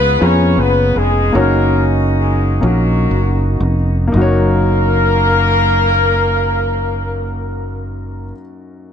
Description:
slow gospel; 36-55 BPM (dotted quarters); 6/8; straight; F# major; A4 = 440 Hz
mellow horn section; melody; 0.0-8.3 s; F#3 to C#5; -17 LUFS; left 2 dB
warm grand piano; accompaniment; 0.0-8.9 s; F#2 to A#5; -19 LUFS; left 2 dB
fingered electric bass; bass; 0.0-8.3 s; E#1 to E#2; -16 LUFS; right 1 dB
light reverb; -12 LUFS; side -8 dB against mid
0.0-4.1 A section; 4.1-8.9 B section
slowing down 0.0-4.1
0.0 C#7; 1.3 F#6

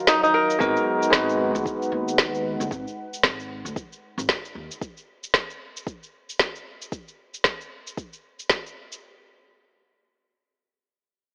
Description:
organic downtempo; 114 BPM; 4/4; swing 59% on 16ths; A4 = 445 Hz
warm analog pad; sustained chords; 0.0-4.8 s; Eb3 to Gb5; -35 LUFS; equal; chorus, tremolo, sidechain pumping
kora; arpeggios; 0.0-1.9 s; Eb4 to Bb4; -24 LUFS; equal; tape echo
electronic snare drum and cabasa; drums; 0.1-9.0 s; -24 LUFS; equal
bell-like tine electric piano; accompaniment; 0.6-2.7 s; Ab3 to Cb5; -26 LUFS; equal; sidechain pumping, tape echo
upright bass; bass; 0.6-4.7 s; Ab1 to Eb2; -36 LUFS; equal; tube saturation, sidechain pumping
electronic kick drum; drums; 0.6-8.6 s; -37 LUFS; equal
light reverb, studio reverb; dry, gritty hardware recording, cassette tape, AM radio sound; -24 LUFS; mono
0.6-9.0 A section
break 0.0-0.6; filter sweep on analog synth pad 0.6-4.8
0.0 Ebmadd9; 0.6 Abm7; 4.8 N.C.

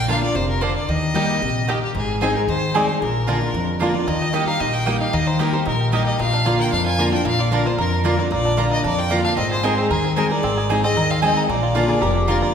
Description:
bluegrass; 227 BPM; 4/4; straight; Bb mixolydian; A4 = 440 Hz
clear fiddle; melody; 0.0-12.5 s; G4 to Ab5; -24 LUFS; left 2 dB
picked steel-string acoustic guitar; accompaniment; 0.0-12.5 s; F2 to Ab4; -21 LUFS; left 1 dB
upright bass; bass; 0.0-12.4 s; F1 to F2; -24 LUFS; left 1 dB
bluegrass banjo; melody; 0.1-12.5 s; Bb3 to Bb4; -28 LUFS; right 4 dB
mandolin; stabs; 0.1-12.4 s; Bb3 to Bb5; -26 LUFS; right 2 dB
lap resonator guitar; second line; 11.8-12.5 s; F4 to Ab4; -24 LUFS; left 2 dB
wet scoring stage reverb, RT60 1.9 s; recorded in a church or concert hall; -17 LUFS; side -7 dB against mid
0.0-4.1 A section; 4.1-12.5 B section
0.0 Bb; 0.9 Eb; 2.0 Ab; 3.0 Bb; 4.1 Eb; 6.2 Bb; 9.4 Ab; 11.5 Bb

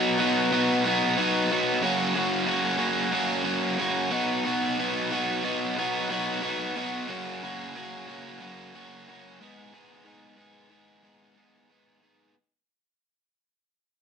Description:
rock; 91 BPM; 4/4; straight; G# minor; A4 = 440 Hz
overdriven electric guitar; solo; 0.0-12.3 s; F#2 to G#4; -24 LUFS; equal
moderate studio reverb, RT60 0.7 s; band playing live in one room; -24 LUFS; side -6 dB against mid
0.0-12.3 A section
fade-out 0.0-12.3
0.0 B; 1.8 F#; 4.1 B; 7.1 F#; 9.4 G#m

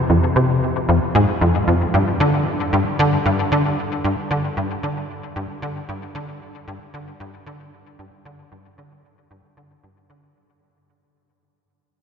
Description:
ambient; 114 BPM; 4/4; straight; A4 = 441 Hz
tight sequencer bass; solo; 0.0-10.3 s; F2 to D3; -18 LUFS; equal; ensemble chorus, ping-pong delay
wet cathedral reverb, RT60 5.5 s; in a vast, echoing space, nothing above 7.8 kHz; -17 LUFS; side -7 dB against mid
0.0-10.4 A section
fade-out 0.0-10.4

